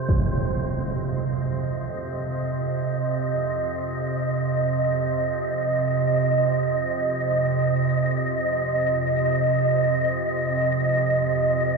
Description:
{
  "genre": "dark ambient drone",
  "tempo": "free time",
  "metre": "none",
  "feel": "none",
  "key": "unclear",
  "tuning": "A4 = 440 Hz",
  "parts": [
    { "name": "organ-like drone", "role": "drone", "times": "0.0-11.8 s", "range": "F2 to C3", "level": "-24 LUFS", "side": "right 3 dB", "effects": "ensemble chorus, built-in reverb" },
    { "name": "wind-like tuned noise texture", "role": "texture", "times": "0.0-11.8 s", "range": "C5 to Eb5", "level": "-24 LUFS", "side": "right 1 dB", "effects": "built-in reverb" }
  ],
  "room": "wet cathedral reverb, RT60 6.2 s",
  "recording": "in a vast, echoing space, cassette tape, studio ambience",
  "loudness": "-21 LUFS",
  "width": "side -3 dB against mid",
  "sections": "0.0-11.8 A section",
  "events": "fade-in on synth drone 0.0-11.8",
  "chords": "0.1 Cmadd11/F"
}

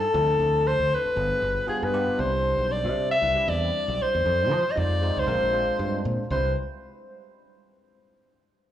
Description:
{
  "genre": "jazz",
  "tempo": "117 BPM",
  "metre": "4/4",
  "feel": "swing 55% on 16ths",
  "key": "C major",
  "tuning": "A4 = 442 Hz",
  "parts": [
    { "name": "clear soprano saxophone", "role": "melody", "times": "0.0-6.5 s", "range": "Ab4 to E5", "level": "-24 LUFS", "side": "left 1 dB", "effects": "slapback echo" },
    { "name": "bell-like tine electric piano", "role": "accompaniment", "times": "0.0-6.5 s", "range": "F3 to C5", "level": "-32 LUFS", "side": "equal", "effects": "analog chorus, slapback echo" },
    { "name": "fingered electric bass", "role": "bass", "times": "0.1-6.5 s", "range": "G1 to F3", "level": "-28 LUFS", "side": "right 1 dB", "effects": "none" }
  ],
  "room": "light reverb, studio reverb",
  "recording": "live gig heard through the venue's PA, club reverb",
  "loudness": "-22 LUFS",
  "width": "side -11 dB against mid",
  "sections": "0.0-2.2 A section; 2.2-6.3 B section; 6.3-8.4 C section",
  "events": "none",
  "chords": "0.1 Dm9; 1.2 G7b9; 2.2 Cmaj9; 4.3 Fm7; 5.3 Bb9; 6.3 Cmaj9"
}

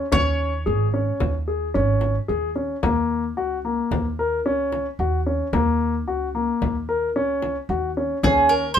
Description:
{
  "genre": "contemporary instrumental, chamber music in an uneven meter",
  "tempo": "111 BPM",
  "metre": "5/4",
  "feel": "straight",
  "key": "unclear",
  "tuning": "A4 = 444 Hz",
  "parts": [
    { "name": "bowl-back mandolin", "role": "melody", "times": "0.0-1.2, 8.2-8.8 s", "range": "Ab4 to Db5", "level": "-20 LUFS", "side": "right 2 dB", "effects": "none" },
    { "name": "warm grand piano", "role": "arpeggios", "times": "0.0-8.6 s", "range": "Bb3 to Bb4", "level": "-23 LUFS", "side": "left 2 dB", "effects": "none" },
    { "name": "upright bass", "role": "bass", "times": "0.1-8.8 s", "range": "Ab1 to Eb2", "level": "-26 LUFS", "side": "right 2 dB", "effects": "none" },
    { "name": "frame drum", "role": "percussion", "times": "0.1-8.6 s", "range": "none", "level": "-26 LUFS", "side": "left 2 dB", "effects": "none" }
  ],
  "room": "light reverb",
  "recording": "minimal, uncompressed stereo recording",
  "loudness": "-20 LUFS",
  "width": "side -9 dB against mid",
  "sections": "0.0-8.8 A section",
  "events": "none",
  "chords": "0.0 Dbsus2; 2.8 Gb; 8.2 Dbsus2"
}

